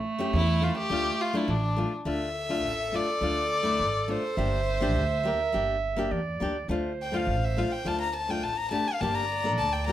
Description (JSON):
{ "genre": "klezmer", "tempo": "104 BPM", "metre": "2/4", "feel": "straight", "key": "D minor", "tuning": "A4 = 440 Hz", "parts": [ { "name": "clear clarinet", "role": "second line", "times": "0.0-9.9 s", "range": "A3 to E5", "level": "-32 LUFS", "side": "right 4 dB", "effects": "none" }, { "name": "nylon-string guitar", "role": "accompaniment", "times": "0.2-9.9 s", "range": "A3 to A4", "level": "-31 LUFS", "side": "left 3 dB", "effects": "none" }, { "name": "upright bass", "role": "bass", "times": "0.3-9.9 s", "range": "G1 to E2", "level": "-31 LUFS", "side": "right 1 dB", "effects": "none" }, { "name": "warm violin", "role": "melody", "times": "0.4-9.9 s", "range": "D4 to Bb5", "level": "-29 LUFS", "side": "left 2 dB", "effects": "slapback echo, plate reverb" } ], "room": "moderate studio reverb, RT60 0.6 s", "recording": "none", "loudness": "-25 LUFS", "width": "side -12 dB against mid", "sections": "0.0-2.1 A section; 2.1-9.9 B section", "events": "violin solo 2.1-9.9", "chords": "0.0 A; 0.9 Dm; 4.4 Gm; 6.7 Dm; 9.0 Gm" }